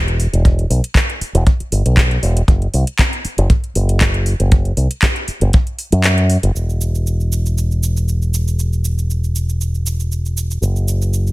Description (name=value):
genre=nu-disco, nu disco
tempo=118 BPM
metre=4/4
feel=swing 54% on 16ths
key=E minor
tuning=A4 = 440 Hz
part: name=fingered electric bass with an envelope filter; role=bass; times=0.0-11.3 s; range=E1 to F#2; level=-15 LUFS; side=equal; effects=sidechain pumping
part: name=house drum kit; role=drums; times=0.1-11.3 s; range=cabasa, handclaps, hi-hat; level=-22 LUFS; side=equal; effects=overdrive
part: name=kick drum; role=drums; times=0.5-5.6 s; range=none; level=-13 LUFS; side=equal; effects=none
room=little or no reverb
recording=none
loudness=-14 LUFS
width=side -20 dB against mid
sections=0.0-6.6 A section; 6.6-11.3 B section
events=kick drops out 6.0-6.6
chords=none